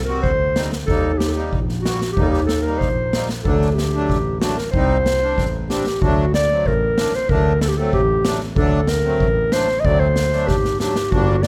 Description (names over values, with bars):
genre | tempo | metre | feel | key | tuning
klezmer | 94 BPM | 2/4 | straight | unclear | A4 = 439 Hz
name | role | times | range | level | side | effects
mellow clarinet | melody | 0.0-11.5 s | F#4 to Eb5 | -23 LUFS | equal | none
accordion | accompaniment | 0.1-11.4 s | F#3 to F#4 | -28 LUFS | equal | none
warm double bass | bass | 0.2-11.5 s | G1 to Eb2 | -24 LUFS | equal | none
street-band drum kit | drums | 0.2-11.5 s | kick drum, snare drum | -25 LUFS | equal | none
room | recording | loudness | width
light reverb | close, detailed microphones | -19 LUFS | mono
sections
0.0-6.0 A section; 6.0-11.5 B section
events
drum fill 5.4-6.0, 10.5-11.1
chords
0.0 Cm; 0.9 Eb; 3.4 D; 4.7 Cm; 6.0 D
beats
0.23 | 0.87 1.51 | 2.16 2.80 | 3.44 4.08 | 4.73 5.37 | 6.01 6.65 | 7.29 7.92 | 8.56 9.20 | 9.84 10.48 | 11.12